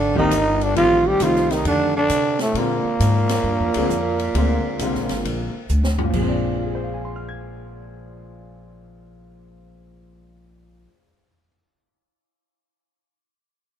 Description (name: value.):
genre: jazz, small-group swing and bop.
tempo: 134 BPM.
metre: 4/4.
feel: swing 66% on 8ths.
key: Bb mixolydian.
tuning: A4 = 438 Hz.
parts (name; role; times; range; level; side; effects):
growling trombone; melody; 0.0-5.7 s; A3 to G4; -21 LUFS; equal; none.
warm tenor saxophone; second line; 0.0-5.7 s; A2 to G3; -24 LUFS; right 6 dB; none.
upright bass; bass; 0.0-10.9 s; G1 to C3; -24 LUFS; equal; none.
clear concert grand piano; accompaniment; 0.2-11.5 s; Bb2 to Ab6; -25 LUFS; left 2 dB; none.
open jazz drum kit; drums; 0.2-6.3 s; crash cymbal, hi-hat, kick drum, ride cymbal, snare drum, toms; -30 LUFS; equal; none.
room: moderate club reverb, RT60 0.7 s.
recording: minimal, uncompressed stereo recording.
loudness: -18 LUFS.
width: side -9 dB against mid.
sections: 0.0-6.1 A section; 6.1-9.7 B section.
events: drum fill 5.7-6.1.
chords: 0.0 Cm7; 0.8 F9; 2.6 Bb9.